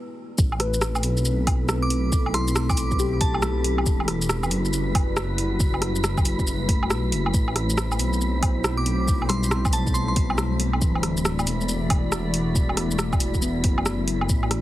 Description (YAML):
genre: future garage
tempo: 138 BPM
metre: 4/4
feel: swing 64% on 16ths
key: A dorian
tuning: A4 = 440 Hz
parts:
  - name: dark analog pad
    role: sustained chords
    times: 0.4-14.6 s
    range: G3 to D5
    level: -30 LUFS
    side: equal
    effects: chorus, phaser, vintage 12-bit sampler grit, sidechain pumping
  - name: dark detuned saw bass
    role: bass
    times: 0.4-14.6 s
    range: D1 to B1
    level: -25 LUFS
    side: equal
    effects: sidechain pumping
  - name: deep house drum kit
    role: drums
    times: 0.4-14.6 s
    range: hi-hat, rim click, shaker, woodblock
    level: -27 LUFS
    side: equal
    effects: none
  - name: electronic kick drum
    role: drums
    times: 0.4-14.4 s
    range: none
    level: -23 LUFS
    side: equal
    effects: none
  - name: wind-like tuned noise texture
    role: texture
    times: 1.1-14.6 s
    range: E5 to B5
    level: -37 LUFS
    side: right 2 dB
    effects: built-in reverb
  - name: muted felt-like synth keys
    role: accompaniment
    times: 0.6-3.9, 6.7-14.3 s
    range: E3 to B4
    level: -31 LUFS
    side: left 4 dB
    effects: chorus, vintage 12-bit sampler grit, sidechain pumping, tape echo
  - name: glassy synth bell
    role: melody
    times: 1.8-3.6, 8.8-10.1 s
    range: A5 to D6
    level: -32 LUFS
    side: right 1 dB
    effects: chorus, digital delay
room: little or no reverb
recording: heavily compressed radio sound, multiband compression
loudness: -20 LUFS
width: side -15 dB against mid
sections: 0.4-14.6 A section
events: break 0.0-0.4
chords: 0.4 Am; 3.9 Emadd9; 7.3 Am; 10.8 Dadd9